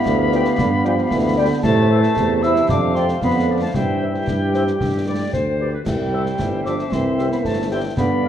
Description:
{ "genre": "military-style march for wind band", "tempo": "114 BPM", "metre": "2/4", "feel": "straight", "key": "C major", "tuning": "A4 = 440 Hz", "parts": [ { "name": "clear woodwind section", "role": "second line", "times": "0.0-8.3 s", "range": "G4 to F5", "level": "-27 LUFS", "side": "left 1 dB", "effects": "none" }, { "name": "mellow piccolo", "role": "second line", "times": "0.0-8.3 s", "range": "G5 to E6", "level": "-27 LUFS", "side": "left 3 dB", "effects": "none" }, { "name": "warm euphonium", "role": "second line", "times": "0.0-8.3 s", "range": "C3 to F3", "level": "-26 LUFS", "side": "right 1 dB", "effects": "none" }, { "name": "dark trombone section", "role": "sustained chords", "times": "0.0-8.3 s", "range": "G3 to E4", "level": "-21 LUFS", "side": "right 2 dB", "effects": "none" }, { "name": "warm tuba", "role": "bass", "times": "0.1-8.3 s", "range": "G1 to A2", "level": "-22 LUFS", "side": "right 1 dB", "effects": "none" }, { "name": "concert snare drum, concert bass drum and clash cymbals", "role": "drums", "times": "0.1-8.2 s", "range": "none", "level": "-26 LUFS", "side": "left 1 dB", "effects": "none" }, { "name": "dark trumpet section", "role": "melody", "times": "0.3-8.3 s", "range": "D5 to G5", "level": "-34 LUFS", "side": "equal", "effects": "none" }, { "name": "warm French horn section", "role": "accompaniment", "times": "0.3-8.3 s", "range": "E4 to D5", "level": "-28 LUFS", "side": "left 6 dB", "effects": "none" } ], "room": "moderate large studio reverb, RT60 1.2 s", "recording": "worn, warbling old tape, cassette tape, warbly pitch drift", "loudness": "-16 LUFS", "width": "side -10 dB against mid", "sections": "0.0-8.3 A section", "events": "none", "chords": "0.0 G7; 1.6 Am; 2.7 Dm7/F; 3.8 C/G; 4.8 G; 5.9 C" }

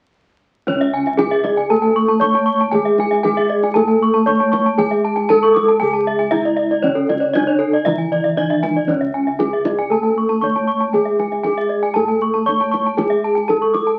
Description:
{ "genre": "Balinese gamelan", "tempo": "117 BPM", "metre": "4/4", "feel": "straight", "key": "C# pelog", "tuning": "A4 = 440 Hz", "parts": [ { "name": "gamelan-type bronze metallophone", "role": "melody", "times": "0.7-14.0 s", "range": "C#4 to C#5", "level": "-20 LUFS", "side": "equal", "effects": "none" }, { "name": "gamelan-type bronze metallophone", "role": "accompaniment", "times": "0.7-14.0 s", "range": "C#3 to A3", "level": "-26 LUFS", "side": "equal", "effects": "none" }, { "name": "gamelan-type bronze metallophone", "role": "arpeggios", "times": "0.7-13.9 s", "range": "A4 to D6+35c", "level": "-24 LUFS", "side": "equal", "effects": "none" }, { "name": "gamelan-type bossed gongs", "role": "bass", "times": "0.7-14.0 s", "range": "C#2 to G#4", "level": "-29 LUFS", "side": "equal", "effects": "none" }, { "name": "kendang", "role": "percussion", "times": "0.7-13.9 s", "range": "none", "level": "-29 LUFS", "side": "equal", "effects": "none" }, { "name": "gamelan-type bronze metallophone", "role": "arpeggios", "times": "0.9-14.0 s", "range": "C#5 to C#6", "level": "-25 LUFS", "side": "equal", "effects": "none" } ], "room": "wet studio reverb, RT60 0.6 s", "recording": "very old 78 rpm record, vinyl crackle", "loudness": "-17 LUFS", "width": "mono", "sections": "0.7-14.0 A section", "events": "none", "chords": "none" }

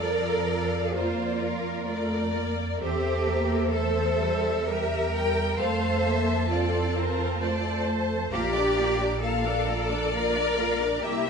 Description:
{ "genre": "classical, slow romantic movement for string orchestra", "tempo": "65 BPM", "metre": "3/4", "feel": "rubato", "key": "unclear", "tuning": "A4 = 440 Hz", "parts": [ { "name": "rich symphonic violin section", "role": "melody", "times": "0.0-11.3 s", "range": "Bb4 to G5", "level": "-32 LUFS", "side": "left 5 dB", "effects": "none" }, { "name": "dark symphonic violin section", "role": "second line", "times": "0.0-11.3 s", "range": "A4 to D6", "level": "-33 LUFS", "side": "left 4 dB", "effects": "none" }, { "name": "rich symphonic viola section", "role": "accompaniment", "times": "0.0-11.3 s", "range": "F3 to C5", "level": "-30 LUFS", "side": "right 1 dB", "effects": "none" }, { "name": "rich symphonic cello section", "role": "bass", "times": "0.0-11.3 s", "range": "F4 to C5", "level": "-28 LUFS", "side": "right 1 dB", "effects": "none" }, { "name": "warm symphonic double bass section", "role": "bass", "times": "0.0-11.3 s", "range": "Bb1 to F2", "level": "-31 LUFS", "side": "right 2 dB", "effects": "none" } ], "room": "wet recital hall reverb, RT60 1.4 s", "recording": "nothing above 10.8 kHz", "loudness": "-24 LUFS", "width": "side -6 dB against mid", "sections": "0.0-11.3 A section", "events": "none", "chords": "0.0 Bb/F; 2.8 C7/E; 5.6 F; 8.3 Bb" }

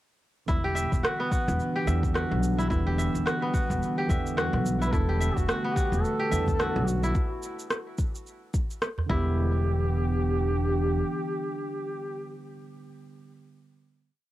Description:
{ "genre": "organic downtempo", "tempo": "108 BPM", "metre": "4/4", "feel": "swing 58% on 16ths", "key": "E minor", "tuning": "A4 = 440 Hz", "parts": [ { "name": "tine electric piano", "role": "accompaniment", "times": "0.5-14.1 s", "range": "D3 to B3", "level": "-36 LUFS", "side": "right 6 dB", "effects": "sidechain pumping, cassette tape, tape echo, plate reverb" }, { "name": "warbly tape-like pad", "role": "sustained chords", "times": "0.9-12.4 s", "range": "E3 to G4", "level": "-34 LUFS", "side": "equal", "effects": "chorus, built-in reverb, sidechain pumping, cassette tape" }, { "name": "kora", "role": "arpeggios", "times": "0.5-10.7 s", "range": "B3 to E5", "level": "-31 LUFS", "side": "left 1 dB", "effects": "vintage 12-bit sampler grit, cassette tape, tape echo, plate reverb" }, { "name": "upright bass", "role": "bass", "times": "0.5-11.0 s", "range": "E1 to E2", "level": "-27 LUFS", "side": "equal", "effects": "sidechain pumping" }, { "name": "electronic kick drum", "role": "drums", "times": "0.5-9.2 s", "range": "none", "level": "-28 LUFS", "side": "equal", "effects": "cassette tape" }, { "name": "electronic shaker and rim click", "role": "drums", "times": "0.5-9.1 s", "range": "none", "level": "-31 LUFS", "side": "equal", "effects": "cassette tape" }, { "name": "warm duduk", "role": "melody", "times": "4.9-12.4 s", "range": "F#4 to B4", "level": "-33 LUFS", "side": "equal", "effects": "cassette tape, tape echo, plate reverb" }, { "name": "udu", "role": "percussion", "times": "6.5-9.1 s", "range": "none", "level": "-31 LUFS", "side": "right 2 dB", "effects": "none" } ], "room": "moderate booth ambience, RT60 0.2 s", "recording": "home recording on cassette", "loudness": "-25 LUFS", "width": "side -15 dB against mid", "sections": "0.5-9.4 groove; 9.4-11.6 final chord", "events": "none", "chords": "0.5 Em7; 4.9 Gadd9/E; 9.1 Em7" }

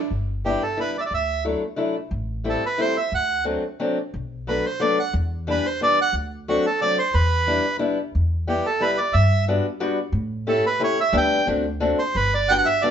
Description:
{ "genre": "musette", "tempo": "180 BPM", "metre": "3/4", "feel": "straight", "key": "G major", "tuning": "A4 = 440 Hz", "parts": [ { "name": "upright bass", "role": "bass", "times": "0.1-12.6 s", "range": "G1 to A2", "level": "-24 LUFS", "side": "equal", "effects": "none" }, { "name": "fingerpicked acoustic archtop guitar", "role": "accompaniment", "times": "0.4-12.9 s", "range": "E3 to G4", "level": "-24 LUFS", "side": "left 3 dB", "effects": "none" }, { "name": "bandoneon", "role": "melody", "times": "0.5-12.9 s", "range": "F#4 to G5", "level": "-21 LUFS", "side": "right 3 dB", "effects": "none" } ], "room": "moderate studio reverb, RT60 0.8 s", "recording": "band playing live in one room, nothing above 7.8 kHz", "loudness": "-20 LUFS", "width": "side -8 dB against mid", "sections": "0.1-12.9 A section", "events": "none", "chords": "0.1 G6; 1.1 Dadd9; 2.1 Am7; 3.1 D7; 4.1 Bm7; 5.1 Em7; 6.1 D7; 7.1 Em7; 8.1 Em; 9.2 Gmaj7; 10.1 A7; 11.1 G/D; 11.5 D7; 12.2 Gmaj7" }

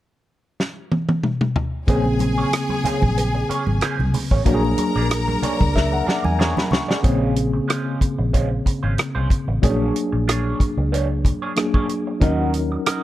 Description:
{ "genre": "lush 1970s-style soul", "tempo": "93 BPM", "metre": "4/4", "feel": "swing 54% on 16ths", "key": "Bb minor", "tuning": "A4 = 440 Hz", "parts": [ { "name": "warm soul drum kit", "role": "drums", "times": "0.6-13.0 s", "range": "hi-hat, kick drum, rim click, snare drum, toms", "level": "-20 LUFS", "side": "equal", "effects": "none" }, { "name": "bright studio violin section", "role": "second line", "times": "1.9-6.7 s", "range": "Ab4 to Bb5", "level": "-26 LUFS", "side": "left 2 dB", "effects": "none" }, { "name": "tine electric piano", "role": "accompaniment", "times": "1.9-13.0 s", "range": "Db3 to C#6", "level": "-23 LUFS", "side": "left 2 dB", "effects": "overdrive, fast stereo tremolo" }, { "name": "electric guitar through a small old amp", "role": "riff", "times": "1.9-13.0 s", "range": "Ab3 to Eb5", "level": "-29 LUFS", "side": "right 6 dB", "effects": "wah" }, { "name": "vintage muted fingered electric bass", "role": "bass", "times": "1.9-12.8 s", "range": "Ab1 to E2", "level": "-22 LUFS", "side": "equal", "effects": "none" }, { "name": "congas", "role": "percussion", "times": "2.1-6.9 s", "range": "none", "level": "-28 LUFS", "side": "right 4 dB", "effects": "none" } ], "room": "light reverb, small room ambience", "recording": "dark, warm production", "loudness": "-18 LUFS", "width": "side -14 dB against mid", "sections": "0.0-1.9 A section; 1.9-7.0 B section; 7.0-13.0 C section", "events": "drum fill 0.6-1.9, 5.8-7.0; tine electric piano fill 5.1-7.0", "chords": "0.0 N.C.; 1.9 Bbm9; 4.5 Bb7alt; 7.0 Bbm9; 9.6 Bb7alt; 12.2 Ebm7" }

